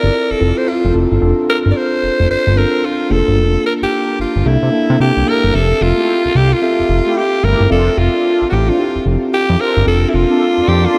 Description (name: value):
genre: R&B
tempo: 111 BPM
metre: 4/4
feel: swing 62% on 16ths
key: F major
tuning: A4 = 440 Hz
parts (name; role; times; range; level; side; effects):
- raspy alto saxophone; melody; 0.0-11.0 s; E4 to D5; -18 LUFS; equal; shimmer reverb
- mellow tine electric piano; accompaniment; 0.0-11.0 s; Bb3 to E5; -20 LUFS; equal; shimmer reverb
- fat analog bass; bass; 0.0-10.9 s; F1 to C3; -17 LUFS; equal; none
- mellow synth brass; stabs; 6.0-10.5 s; A3 to A4; -25 LUFS; equal; chorus, shimmer reverb
- lush unison pad; sustained chords; 10.2-11.0 s; Bb3 to C6; -26 LUFS; equal; chorus, shimmer reverb
room: moderate lush hall reverb, RT60 2.7 s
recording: dark, warm production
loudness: -14 LUFS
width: mono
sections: 0.0-5.5 A section; 5.5-11.0 B section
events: none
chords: 0.0 Dm7/F (rootless); 1.2 F69; 3.1 Gm9/F; 4.5 C13; 5.5 Fmaj9; 7.7 Dm7/F; 9.9 Bbmaj9/F